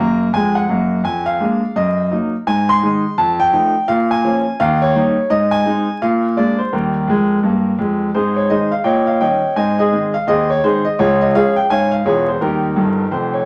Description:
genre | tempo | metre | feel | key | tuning
jazz, stride piano | 169 BPM | 4/4 | swing 61% on 8ths | Ab major | A4 = 436 Hz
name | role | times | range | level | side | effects
warm concert grand piano | solo | 0.0-13.5 s | Fb1 to C6 | -16 LUFS | equal | none
room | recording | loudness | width
wet studio reverb, RT60 0.7 s | vinyl crackle | -16 LUFS | mono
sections
0.0-8.1 A section; 8.1-13.5 B section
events
grand piano fill 12.8-13.5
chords
0.0 Ebm (rootless); 1.0 Bb7/F; 1.8 Ebm/Gb; 2.5 Ab; 3.2 F7; 3.9 Bbm7; 4.6 Eb7; 5.3 Ab; 6.0 Bb7; 6.7 Eb; 8.1 Ab; 8.9 Eb7/Bb; 9.6 Ab; 11.0 Db; 12.4 Eb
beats
0.33 0.68 | 1.04 1.40 1.75 2.11 | 2.47 2.82 3.18 3.53 | 3.89 4.24 4.60 4.95 | 5.31 5.66 6.01 6.37 | 6.72 7.08 7.43 7.79 | 8.14 8.50 8.85 9.21 | 9.56 9.92 10.27 10.63 | 10.98 11.34 11.69 12.05 | 12.40 12.76 13.12

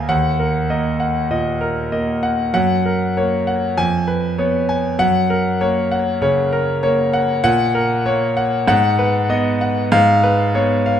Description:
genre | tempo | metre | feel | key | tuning
classical, virtuoso piano study | 98 BPM | 4/4 | rubato | F# major from 7.4 s | A4 = 440 Hz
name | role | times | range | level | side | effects
clear concert grand piano | solo | 0.0-11.0 s | D2 to Ab5 | -15 LUFS | equal | none
room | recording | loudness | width
moderate concert hall reverb, RT60 1.8 s | close, detailed microphones | -15 LUFS | side -9 dB against mid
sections
0.0-11.0 A section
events
none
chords
0.1 Ebm; 2.5 Gb; 3.8 Db7/F; 5.0 Gb; 7.4 F#/A#; 8.7 G#m7; 9.9 C#7/G#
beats
| 0.10 0.71 1.31 1.93 | 2.54 3.16 3.78 4.39 | 5.00 5.61 6.22 6.84 | 7.45 8.06 8.68 9.30 | 9.92 10.54

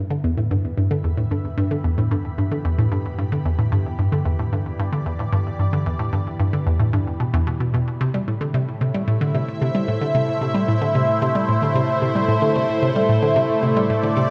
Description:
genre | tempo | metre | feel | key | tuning
ambient, sequencer-driven space music | 112 BPM | 4/4 | straight | E minor | A4 = 440 Hz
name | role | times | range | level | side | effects
lush unison pad | sustained chords | 0.1-14.3 s | A2 to B5 | -26 LUFS | equal | chorus, phaser
hollow square pluck | riff | 0.0-14.2 s | E2 to G3 | -22 LUFS | equal | chorus, delay
room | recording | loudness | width
wet concert hall reverb, RT60 2.3 s | cassette tape | -21 LUFS | mono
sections
0.0-14.3 A section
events
fade-in on analog synth pad 0.0-14.3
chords
0.0 Em; 8.0 Am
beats
0.51 1.04 | 1.58 2.11 2.65 3.18 | 3.72 4.26 4.79 5.33 | 5.86 6.40 6.93 7.47 | 8.01 8.54 9.08 9.61 | 10.15 10.68 11.22 11.76 | 12.29 12.83 13.36 13.90

